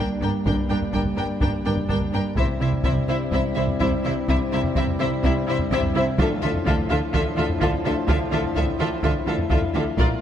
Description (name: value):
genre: cinematic, epic orchestral film score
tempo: 126 BPM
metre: 4/4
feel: straight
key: unclear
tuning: A4 = 443 Hz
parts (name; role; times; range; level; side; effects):
- rich symphonic violin section; melody; 0.0-10.1 s; D5 to G5; -32 LUFS; left 4 dB; none
- warm studio violin section; second line; 0.0-10.1 s; A4 to C5; -31 LUFS; left 3 dB; none
- clear symphonic viola section; accompaniment; 0.0-10.1 s; D4 to F4; -29 LUFS; right 1 dB; none
- bright trombone section; sustained chords; 0.0-10.2 s; G2 to G3; -31 LUFS; right 3 dB; none
- mellow French horn section; sustained chords; 0.0-10.2 s; Bb3 to E4; -29 LUFS; left 6 dB; none
- rich symphonic cello section; bass; 0.0-10.0 s; G2 to D3; -28 LUFS; right 2 dB; none
- rich symphonic double bass section; bass; 0.0-10.1 s; G1 to D2; -28 LUFS; right 3 dB; none
- taiko ensemble; drums; 0.5-10.2 s; none; -26 LUFS; equal; none
- timpani; percussion; 6.2-6.9 s; D3; -30 LUFS; equal; none
room: moderate scoring stage reverb, RT60 1.5 s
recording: none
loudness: -20 LUFS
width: side -10 dB against mid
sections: 0.0-10.2 A section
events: none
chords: 0.0 Gm; 2.4 C; 6.2 Dmadd9